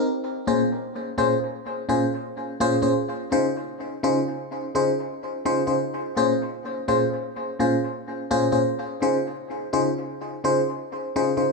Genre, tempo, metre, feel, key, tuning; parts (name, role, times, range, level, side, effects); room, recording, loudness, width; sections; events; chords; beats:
reggae; 84 BPM; 4/4; swing 60% on 16ths; Bb minor; A4 = 440 Hz
FM electric piano; solo; 0.0-11.5 s; Bb2 to C5; -22 LUFS; left 1 dB; chorus, phaser, dub echo
wet echo chamber reverb, RT60 1.6 s, digital ambience; small room ambience; -22 LUFS; side -2 dB against mid
0.1-11.5 A section
0.1 Bbm7; 3.0 Dbmaj7; 5.8 Bbm7; 8.7 Dbmaj7
| 0.12 0.83 1.54 2.25 | 2.97 3.68 4.39 5.10 | 5.82 6.53 7.24 7.95 | 8.66 9.38 10.09 10.80